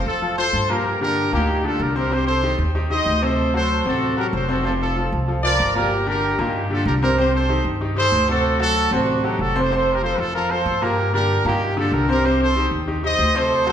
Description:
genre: latin, salsa.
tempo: 190 BPM.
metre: 4/4.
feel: straight.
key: G minor.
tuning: A4 = 440 Hz.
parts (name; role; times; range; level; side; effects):
bright grand piano; accompaniment; 0.0-13.7 s; Bb2 to C5; -22 LUFS; equal; none.
warm trumpet section; melody; 0.1-13.7 s; D4 to Eb5; -21 LUFS; equal; none.
upright bass; bass; 0.1-13.7 s; F1 to G2; -24 LUFS; equal; none.
room: wet recital hall reverb, RT60 1.4 s.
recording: recorded in a church or concert hall.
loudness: -17 LUFS.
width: side -9 dB against mid.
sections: 0.0-5.9 A section; 5.9-13.7 A section.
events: none.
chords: 0.0 F; 0.9 Gm; 2.1 Cm; 3.4 D7; 4.6 F; 5.9 Gm; 7.2 Cm; 8.4 D7; 9.7 F; 11.0 Gm; 12.2 Cm.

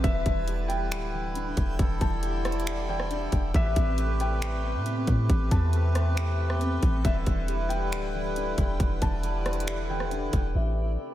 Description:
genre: hip hop, atmospheric cloud-rap.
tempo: 137 BPM.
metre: 4/4.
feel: half-time.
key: A minor.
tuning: A4 = 442 Hz.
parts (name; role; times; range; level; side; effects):
felt-muted upright piano; melody; 0.0-11.1 s; E5 to A5; -36 LUFS; left 1 dB; wide subtle chorus, low-pass filter, analog delay.
accordion; sustained chords; 0.0-11.1 s; C3 to B4; -33 LUFS; equal; sidechain pumping, low-pass filter.
mellow electric guitar; arpeggios; 0.0-10.6 s; E3 to D6; -37 LUFS; equal; ensemble chorus, analog delay.
warm 808-style bass; bass; 0.0-11.0 s; D1 to A2; -28 LUFS; equal; none.
trap drum kit; drums; 0.0-10.4 s; finger snaps, hi-hat, kick drum, rim click; -28 LUFS; equal; none.
backwards swelling texture; texture; 0.0-11.1 s; G3 to G5; -41 LUFS; left 1 dB; built-in reverb.
room: light reverb, digital ambience.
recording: none.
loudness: -24 LUFS.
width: side -13 dB against mid.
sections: 0.0-10.6 A section.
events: none.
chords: 0.0 Em7; 3.5 Am9; 7.0 Em7; 10.6 Am9.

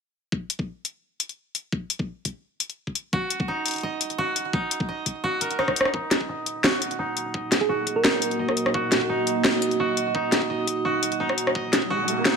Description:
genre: half-time drum and bass.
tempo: 171 BPM.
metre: 4/4.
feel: half-time.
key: Eb minor.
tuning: A4 = 443 Hz.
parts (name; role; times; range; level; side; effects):
electronic kick drum; drums; 0.3-11.9 s; none; -29 LUFS; left 1 dB; high-pass filter on kick, high-pass filter on room.
drum and bass drum kit; drums; 0.5-12.3 s; hi-hat, rim click, snare drum; -23 LUFS; left 1 dB; none.
koto; arpeggios; 3.1-12.4 s; Eb4 to Eb5; -27 LUFS; right 1 dB; low-pass filter, digital delay.
dark analog pad; sustained chords; 5.9-12.4 s; Bb3 to Eb5; -28 LUFS; right 2 dB; chorus, phaser, sidechain pumping.
thumb-piano-like synth pluck; melody; 7.6-8.3 s; Ab4 to Bb4; -28 LUFS; right 4 dB; chorus, digital delay.
riser; sound effects; 11.7-12.4 s; none; -30 LUFS; equal; none.
room: wet echo chamber reverb, RT60 1.3 s.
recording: high-pass filter.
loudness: -22 LUFS.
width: side -5 dB against mid.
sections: 0.3-5.9 A section; 5.9-12.4 B section.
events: drum fill 5.6-5.9; build-up 5.9-12.4; filter sweep on koto 5.9-12.4; riser 11.7-12.4.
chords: 0.3 Ebm.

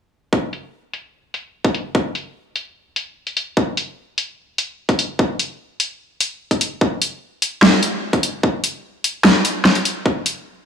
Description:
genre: heavy wobble dubstep.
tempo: 148 BPM.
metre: 4/4.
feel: half-time.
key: none.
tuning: none.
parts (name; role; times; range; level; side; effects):
electronic kick drum; drums; 0.3-10.1 s; none; -19 LUFS; equal; high-pass filter on kick, high-pass filter on room.
dubstep drum kit; drums; 0.5-10.3 s; hi-hat, snare drum; -16 LUFS; equal; low-pass filter on hats, low-pass filter on snare.
room: moderate lush hall reverb, RT60 1.9 s.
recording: small room ambience.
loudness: -18 LUFS.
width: side -7 dB against mid.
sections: 0.3-10.7 A section.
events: filter sweep on drum 0.3-10.7.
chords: none.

